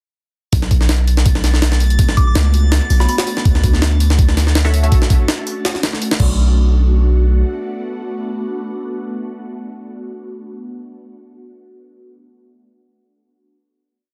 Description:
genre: drum and bass, jungle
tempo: 164 BPM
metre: 4/4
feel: swing 54% on 16ths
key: B minor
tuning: A4 = 438 Hz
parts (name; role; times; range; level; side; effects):
- ethereal airy pad; sustained chords; 1.4-10.1 s; A3 to F#4; -28 LUFS; equal; ensemble chorus, built-in reverb, phaser
- long sustained 808-style bass; bass; 0.5-7.4 s; B1 to D2; -16 LUFS; equal; none
- jungle sampler-style drum kit; drums; 0.5-6.3 s; crash cymbal, hi-hat, kick drum, snare drum; -18 LUFS; equal; none
- drifting glass-harmonics texture; texture; 1.1-4.9 s; A6; -33 LUFS; equal; chorus, built-in reverb
- soft synth bell; melody; 2.2-3.2 s; B5 to D6; -28 LUFS; equal; chorus, dub echo
- filtered dub chord stab; stabs; 4.6-10.8 s; F#4 to E5; -30 LUFS; equal; phaser, lush chorus, dub echo
room: digital ambience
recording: dense, heavily limited modern master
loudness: -15 LUFS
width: mono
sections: 0.5-6.4 drop; 6.4-9.3 final hit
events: drop 0.5-6.4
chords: 0.5 Bm7; 3.5 Dmaj7; 6.2 Bm7

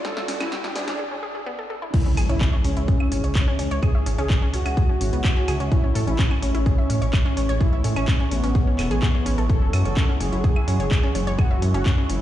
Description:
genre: melodic techno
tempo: 127 BPM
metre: 4/4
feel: straight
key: C# phrygian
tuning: A4 = 440 Hz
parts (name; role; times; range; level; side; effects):
- expressive synth lead; melody; 0.0-12.2 s; B3 to A4; -29 LUFS; equal; ensemble chorus, sidechain pumping, tape echo
- dark analog pad; sustained chords; 0.0-12.2 s; F#4 to C#6; -36 LUFS; right 1 dB; chorus, sidechain pumping
- wide unison pluck; arpeggios; 0.0-12.2 s; B3 to E6; -31 LUFS; left 1 dB; sidechain pumping, ping-pong delay
- dark detuned saw bass; bass; 0.0-12.2 s; D1 to A2; -24 LUFS; equal; tube saturation, sidechain pumping, high-pass filter
- analog drone; drone; 0.0-12.2 s; E3 to G#3; -36 LUFS; right 1 dB; chorus, sidechain pumping
- electronic kick drum; drums; 0.0-12.0 s; none; -20 LUFS; equal; high-pass filter on kick
- punchy analog drum machine; drums; 0.0-12.2 s; claves, crash cymbal, handclaps, hi-hat, snare drum; -32 LUFS; equal; sidechain pumping on hats, sidechain pumping on perc, sidechain pumping on cymbals
- riser and impact; sound effects; 0.0-3.8 s; none; -28 LUFS; equal; none
room: digital ambience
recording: played on a big sound system in a bare room, large studio reverb, high-pass filter, nothing above 11.0 kHz, faint mains hum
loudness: -19 LUFS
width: side -13 dB against mid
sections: 0.0-1.9 A section; 1.9-12.2 B section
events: build-up 0.0-1.9; drum fill 0.0-1.0; riser 0.0-1.0; filter sweep 0.0-1.9; break 1.0-1.9; drop 1.9-12.2; impact 1.9-3.8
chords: 0.0 Dadd9; 1.9 C#m; 5.7 A; 9.5 F#m

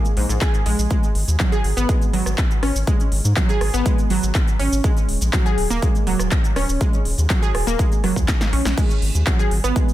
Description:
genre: progressive house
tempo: 122 BPM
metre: 4/4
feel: straight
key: unclear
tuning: A4 = 440 Hz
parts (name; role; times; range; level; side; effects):
- big-room dance drum kit; drums; 0.0-9.9 s; crash cymbal, handclaps, hi-hat, rim click, shaker, snare drum; -26 LUFS; equal; sidechain pumping on hats, sidechain pumping on perc, sidechain pumping on cymbals
- analog pluck; arpeggios; 0.2-9.8 s; G#2 to G#4; -24 LUFS; right 2 dB; chorus, sidechain pumping, dub echo
- round analog bass; bass; 0.2-9.7 s; D#1 to G#2; -21 LUFS; equal; sidechain pumping
- electronic kick drum; drums; 0.4-9.9 s; none; -19 LUFS; equal; none
room: digital ambience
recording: dense, heavily limited modern master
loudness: -17 LUFS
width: side -14 dB against mid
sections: 0.0-9.9 A section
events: drum fill 8.3-8.8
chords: 0.0 A#7(no3); 0.9 N.C.; 4.8 D#m; 8.8 N.C.

